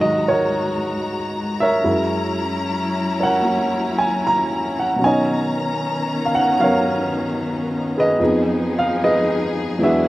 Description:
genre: jazz ballad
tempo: 76 BPM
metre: 4/4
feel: swing 67% on 8ths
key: unclear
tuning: A4 = 440 Hz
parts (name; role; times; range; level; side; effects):
- warm grand piano; accompaniment; 0.0-10.1 s; E2 to Bb5; -18 LUFS; right 1 dB; none
- warm studio string section; sustained chords; 0.0-10.1 s; D#3 to Bb5; -23 LUFS; left 2 dB; none
room: little or no reverb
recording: recorded outdoors, with no room sound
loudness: -17 LUFS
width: side -17 dB against mid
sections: 0.0-10.1 A section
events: none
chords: 0.0 Abm9; 1.8 Gb7; 5.0 Bmaj9; 8.2 Fm7b5

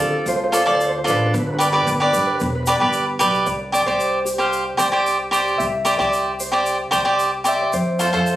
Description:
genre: calypso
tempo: 113 BPM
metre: 4/4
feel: straight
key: C major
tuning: A4 = 440 Hz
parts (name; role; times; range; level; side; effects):
- Celtic harp; melody; 0.0-8.4 s; C4 to E5; -24 LUFS; equal; plate reverb
- cavaquinho; accompaniment; 0.0-8.4 s; F4 to F5; -18 LUFS; right 1 dB; none
- upright bass; bass; 0.0-8.4 s; E1 to D3; -27 LUFS; equal; none
- egg shaker; percussion; 0.3-8.4 s; none; -31 LUFS; left 1 dB; none
room: moderate studio reverb, RT60 0.6 s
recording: recorded on a phone in the room, studio reverb, compression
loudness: -16 LUFS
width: side -14 dB against mid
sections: 0.0-3.5 A section; 3.5-8.4 B section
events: harp solo 3.5-8.4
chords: 0.0 Dm7; 1.3 G; 3.5 Csus2; 7.7 F6

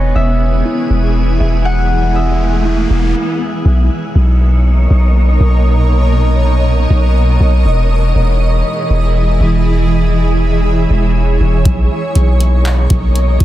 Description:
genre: hip hop, atmospheric cloud-rap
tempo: 120 BPM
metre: 4/4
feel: half-time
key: B major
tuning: A4 = 438 Hz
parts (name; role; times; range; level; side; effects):
- Celtic harp; melody; 0.0-3.9 s; B4 to F#5; -24 LUFS; left 2 dB; low-pass filter, digital delay
- granular cloud pad; sustained chords; 0.0-13.4 s; B2 to D#5; -17 LUFS; right 1 dB; built-in reverb, sidechain pumping, low-pass filter
- muted felt-like synth keys; arpeggios; 0.0-3.7 s; E4 to D#6; -25 LUFS; right 2 dB; chorus, low-pass filter, digital delay
- long sustained 808-style bass; bass; 0.0-13.4 s; E1 to B1; -11 LUFS; equal; none
- riser; sound effects; 1.0-3.2 s; none; -26 LUFS; equal; none
- wind-like tuned noise texture; texture; 0.0-13.4 s; G#3 to D#6; -25 LUFS; right 1 dB; built-in reverb
- booming analog drum machine; drums; 11.7-13.4 s; handclaps, hi-hat, kick drum; -16 LUFS; equal; none
room: digital ambience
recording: dense, heavily limited modern master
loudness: -10 LUFS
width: side -14 dB against mid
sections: 0.0-3.7 A section; 3.7-13.4 B section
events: riser 1.0-3.7; stop 3.2-3.7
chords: 0.0 Emaj7; 3.7 Bmaj9; 7.7 Emaj7; 11.7 Bmaj9

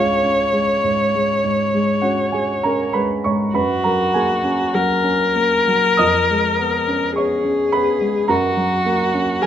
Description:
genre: classical, romantic duo for viola and grand piano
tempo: 46-54 BPM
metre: 4/4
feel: rubato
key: F# major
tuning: A4 = 440 Hz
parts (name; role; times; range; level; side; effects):
- warm viola; melody; 0.0-9.5 s; F#4 to C#5; -18 LUFS; left 2 dB; none
- dark grand piano; accompaniment; 0.0-9.5 s; C#2 to D#6; -19 LUFS; right 2 dB; none
room: moderate recital hall reverb, RT60 1.6 s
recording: close, detailed microphones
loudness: -16 LUFS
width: side -10 dB against mid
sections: 0.0-9.5 A section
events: none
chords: 0.0 C#; 3.5 F#; 6.0 C#7/E#; 8.3 F#

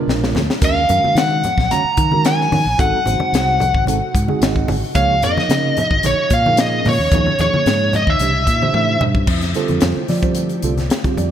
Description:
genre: electric jazz fusion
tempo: 111 BPM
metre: 4/4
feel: straight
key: unclear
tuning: A4 = 440 Hz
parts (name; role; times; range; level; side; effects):
- mellow tine electric piano; accompaniment; 0.0-11.3 s; D3 to Gb5; -23 LUFS; right 6 dB; phaser
- ethereal airy pad; sustained chords; 0.0-11.3 s; Bb2 to G4; -29 LUFS; left 2 dB; none
- fingered electric bass; bass; 0.1-11.3 s; Ab1 to F3; -20 LUFS; equal; none
- crisp fusion drum kit; drums; 0.1-11.3 s; crash cymbal, hi-hat, kick drum, snare drum, splash cymbal, toms; -20 LUFS; left 1 dB; none
- congas; percussion; 0.3-11.3 s; none; -25 LUFS; left 2 dB; none
- biting lead guitar; melody; 0.6-9.0 s; Db5 to Bb5; -17 LUFS; equal; overdrive, ping-pong delay
room: moderate plate reverb, RT60 2.8 s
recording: bright 1980s-style digital production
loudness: -14 LUFS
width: side -10 dB against mid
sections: 0.0-9.3 A section; 9.3-11.3 B section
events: drum fill 0.0-0.6, 8.7-9.3; tine electric piano fill 4.1-5.0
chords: 0.0 Bb7b9; 0.6 Ebm9; 2.8 Ab7b9; 5.0 Dbmaj9; 6.0 Bbm7; 7.1 Eb5; 8.2 C7; 9.3 Fadd9

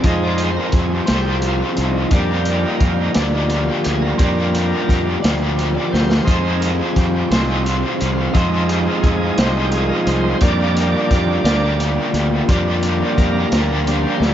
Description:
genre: psychedelic rock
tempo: 58 BPM (dotted quarters)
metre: 6/8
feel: straight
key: unclear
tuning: A4 = 440 Hz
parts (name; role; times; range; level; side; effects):
- bright tonewheel organ; sustained chords; 0.0-14.3 s; F3 to Eb5; -23 LUFS; right 3 dB; slow rotary speaker, overdrive
- biting overdriven guitar; riff; 0.0-14.3 s; F3 to D5; -20 LUFS; left 1 dB; harmonic tremolo
- fuzz fingered electric bass; bass; 0.0-14.3 s; C2 to F2; -20 LUFS; equal; overdrive
- crunchy breakbeat drum kit; drums; 0.0-14.3 s; hi-hat, kick drum, snare drum; -20 LUFS; equal; none
room: light reverb, small room ambience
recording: nothing above 7.6 kHz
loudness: -15 LUFS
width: side -10 dB against mid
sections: 0.0-14.3 A section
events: tonewheel organ solo 0.0-14.3; drum fill 5.9-6.3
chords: 0.0 Fm7; 2.1 Gm; 6.3 Fm7; 10.4 Gm

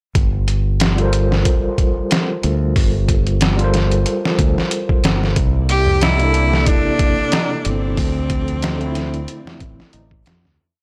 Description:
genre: trip hop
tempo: 92 BPM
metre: 4/4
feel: swing 56% on 16ths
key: G dorian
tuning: A4 = 440 Hz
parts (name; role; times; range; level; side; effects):
- modern bright fingered electric bass; bass; 0.2-10.6 s; G1 to F2; -20 LUFS; equal; tube saturation
- trip hop sampler-style drum kit; drums; 0.2-10.6 s; hi-hat, kick drum, snare drum; -20 LUFS; equal; studio reverb
- overdriven tine electric piano; accompaniment; 1.0-10.1 s; C3 to C5; -25 LUFS; equal; fast tremolo, harmonic tremolo, low-pass filter, tape echo
- string machine, cellos; sustained chords; 5.4-10.6 s; F3 to D5; -33 LUFS; equal; none
- clear cello; melody; 5.7-9.9 s; C4 to G4; -23 LUFS; equal; vintage 12-bit sampler grit, tape echo
- tabla; percussion; 5.9-10.6 s; none; -30 LUFS; equal; none
room: little or no reverb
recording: dry, gritty hardware recording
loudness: -17 LUFS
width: mono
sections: 0.2-10.6 groove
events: fade-out 7.1-10.6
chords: 0.2 Gm11; 5.4 C13; 8.0 Dm7

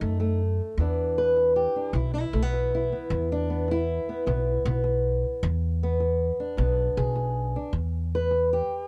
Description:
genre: acoustic country blues, solo or duo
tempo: 104 BPM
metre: 4/4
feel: swing 68% on 8ths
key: E mixolydian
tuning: A4 = 440 Hz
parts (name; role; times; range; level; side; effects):
- fingerpicked old ladder-braced acoustic guitar; melody; 0.0-8.9 s; E2 to B4; -28 LUFS; equal; none
- upright bass; bass; 0.0-8.6 s; B1 to F#2; -29 LUFS; equal; none
room: studio ambience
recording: dry, close 1970s-style studio recording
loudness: -26 LUFS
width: mono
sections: 0.8-8.9 A section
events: steel-string acoustic guitar solo 0.8-8.9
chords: 0.0 B7 (rootless); 0.8 E7(no3)

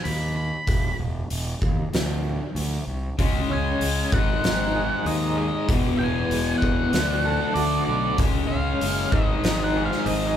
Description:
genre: quiet-loud alternative rock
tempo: 96 BPM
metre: 4/4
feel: straight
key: unclear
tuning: A4 = 441 Hz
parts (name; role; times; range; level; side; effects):
- octave-fuzz lead guitar; melody; 0.0-10.4 s; D5 to B5; -28 LUFS; right 2 dB; distortion
- fuzz fingered electric bass; bass; 0.1-10.4 s; E1 to D#2; -27 LUFS; equal; overdrive
- oversized low-tuned drum kit; drums; 0.1-10.2 s; hi-hat, kick drum, snare drum; -26 LUFS; equal; none
- electric guitar through a small old amp; arpeggios; 3.2-10.4 s; E2 to A4; -28 LUFS; right 1 dB; tremolo
- thick fuzz guitar; riff; 3.2-10.4 s; E2 to D4; -27 LUFS; left 6 dB; distortion
room: light reverb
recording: band playing live in one room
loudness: -21 LUFS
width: side -10 dB against mid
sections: 0.0-10.4 A section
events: none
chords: 0.0 N.C.; 0.7 Badd11/E; 1.9 Csus2; 3.2 C#5; 4.1 G#5; 5.7 E; 6.9 D; 8.2 C#; 9.1 G#5

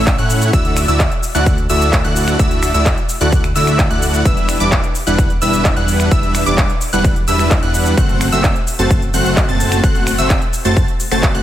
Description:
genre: EDM, festival progressive house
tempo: 129 BPM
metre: 4/4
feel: straight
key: E minor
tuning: A4 = 440 Hz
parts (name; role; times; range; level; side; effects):
- plucky unison lead; arpeggios; 0.0-11.4 s; D6 to A6; -21 LUFS; equal; sidechain pumping, dub echo
- dense compressed supersaw; riff; 0.0-11.4 s; G3 to A5; -18 LUFS; equal; cassette tape, sidechain pumping, dub echo
- fat analog bass; bass; 0.0-11.4 s; E1 to A2; -18 LUFS; equal; sidechain pumping
- big-room dance drum kit; drums; 0.1-11.4 s; cabasa, finger snaps, handclaps, hi-hat; -22 LUFS; equal; overdrive
- electronic kick drum; drums; 0.1-11.3 s; none; -16 LUFS; equal; overdrive
room: little or no reverb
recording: none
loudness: -12 LUFS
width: side -12 dB against mid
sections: 0.0-11.4 A section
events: none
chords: 0.0 A; 0.5 Dadd9; 4.3 Em7; 8.0 F#dim

